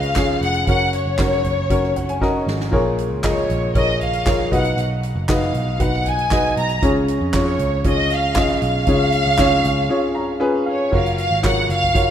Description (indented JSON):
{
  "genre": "piano-driven pop",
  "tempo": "117 BPM",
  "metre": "4/4",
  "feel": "straight",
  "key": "unclear",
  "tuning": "A4 = 440 Hz",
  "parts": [
    { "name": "rich studio violin section", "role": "melody", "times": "0.0-12.1 s", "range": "C#5 to A#5", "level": "-21 LUFS", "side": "equal", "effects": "none" },
    { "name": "warm upright piano", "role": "accompaniment", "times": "0.0-12.1 s", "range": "A#2 to A#5", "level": "-21 LUFS", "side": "left 1 dB", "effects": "none" },
    { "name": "picked electric bass", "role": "bass", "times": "0.0-12.1 s", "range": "E#1 to E#2", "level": "-23 LUFS", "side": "right 1 dB", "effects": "none" },
    { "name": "soft-mallet drum kit", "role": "drums", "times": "0.0-12.1 s", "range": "crash cymbal, handclaps, hi-hat, kick drum, snare drum, splash cymbal, toms", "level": "-24 LUFS", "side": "right 1 dB", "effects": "none" }
  ],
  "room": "light reverb",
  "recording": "rough home demo mix",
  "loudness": "-16 LUFS",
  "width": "side -9 dB against mid",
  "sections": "0.0-10.9 A section; 10.9-12.1 B section",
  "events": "upright piano fill 1.7-2.7, 9.9-10.9; drum fill 2.2-2.7; break 9.9-10.9",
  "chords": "0.0 C#; 0.7 F#; 2.7 A#m7; 4.5 B; 6.8 C#"
}